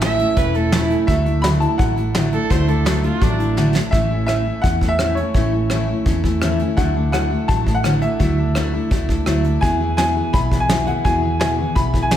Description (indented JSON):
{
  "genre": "honky-tonk and classic country",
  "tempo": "168 BPM",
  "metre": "4/4",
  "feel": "straight",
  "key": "D lydian",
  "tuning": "A4 = 440 Hz",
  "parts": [
    { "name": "bright upright piano", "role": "melody", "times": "0.0-12.2 s", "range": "C#5 to B5", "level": "-23 LUFS", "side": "left 1 dB", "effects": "none" },
    { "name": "rich fiddle", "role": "second line", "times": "0.0-3.6 s", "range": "D4 to E5", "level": "-24 LUFS", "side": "right 4 dB", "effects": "none" },
    { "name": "picked steel-string acoustic guitar", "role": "accompaniment", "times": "0.0-12.2 s", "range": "E2 to G#4", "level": "-21 LUFS", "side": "left 1 dB", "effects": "none" },
    { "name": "vintage muted fingered electric bass", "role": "bass", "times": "0.0-12.2 s", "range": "E1 to E2", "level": "-21 LUFS", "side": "right 1 dB", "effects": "none" },
    { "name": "soft brush drum kit", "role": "drums", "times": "0.0-12.2 s", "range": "hi-hat, kick drum, rim click, snare drum", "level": "-21 LUFS", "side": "equal", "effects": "none" }
  ],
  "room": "moderate recital hall reverb, RT60 1.3 s",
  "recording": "heard from further back in the room",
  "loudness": "-16 LUFS",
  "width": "side -10 dB against mid",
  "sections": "0.0-3.9 A section; 3.9-12.2 B section",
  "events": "drum fill 3.6-3.9",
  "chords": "0.0 A; 1.1 Dadd9; 3.9 A; 6.8 Dadd9; 9.6 E",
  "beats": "0.01 0.37 0.72 | 1.08 1.44 1.79 2.15 | 2.50 2.86 3.21 3.57 | 3.93 4.28 4.64 5.00 | 5.35 5.71 6.06 6.42 | 6.78 7.13 7.49 7.84 | 8.20 8.56 8.91 9.27 | 9.62 9.98 10.34 10.69 | 11.05 11.40 11.76 12.12"
}